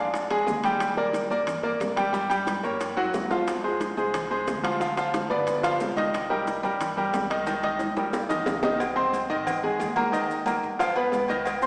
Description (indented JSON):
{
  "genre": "latin, salsa",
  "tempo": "180 BPM",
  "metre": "4/4",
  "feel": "straight",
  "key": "C minor",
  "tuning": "A4 = 440 Hz",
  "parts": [
    { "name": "bright upright piano", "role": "accompaniment", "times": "0.0-11.7 s", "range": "Eb3 to C6", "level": "-27 LUFS", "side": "equal", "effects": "none" },
    { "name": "upright bass", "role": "bass", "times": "0.0-11.7 s", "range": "G1 to G2", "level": "-43 LUFS", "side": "equal", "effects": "none" },
    { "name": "bongos and cowbell", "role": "percussion", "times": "0.1-11.6 s", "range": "none", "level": "-38 LUFS", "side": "equal", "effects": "none" },
    { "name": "congas", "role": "percussion", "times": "0.1-11.7 s", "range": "none", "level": "-40 LUFS", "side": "equal", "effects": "none" },
    { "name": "maracas", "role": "percussion", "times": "0.1-11.7 s", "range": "none", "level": "-52 LUFS", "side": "equal", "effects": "none" },
    { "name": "timbales and agogo bells", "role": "percussion", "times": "0.1-11.6 s", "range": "none", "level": "-35 LUFS", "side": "equal", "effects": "none" }
  ],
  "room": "wet concert hall reverb, RT60 2.2 s",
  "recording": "recorded in a church or concert hall, small speaker sound",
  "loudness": "-26 LUFS",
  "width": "mono",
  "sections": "0.0-8.8 A section; 8.8-11.7 B section",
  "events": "drum fill 3.0-3.5, 7.5-8.8",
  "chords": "0.0 Bb7 (rootless); 0.8 Ebmaj7; 2.1 Gdim; 2.8 F#; 3.5 Fm; 4.8 G7; 6.1 Cm7; 8.8 Cm; 9.5 Absus2; 10.1 Eb; 10.8 G7",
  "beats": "0.13 0.47 | 0.80 1.14 1.47 1.80 | 2.14 2.47 2.81 3.14 | 3.47 3.81 4.14 4.47 | 4.80 5.14 5.47 5.80 | 6.14 6.47 6.80 7.13 | 7.47 7.80 8.13 8.47 | 8.80 9.13 9.46 9.79 | 10.13 10.46 10.79 11.12 | 11.46"
}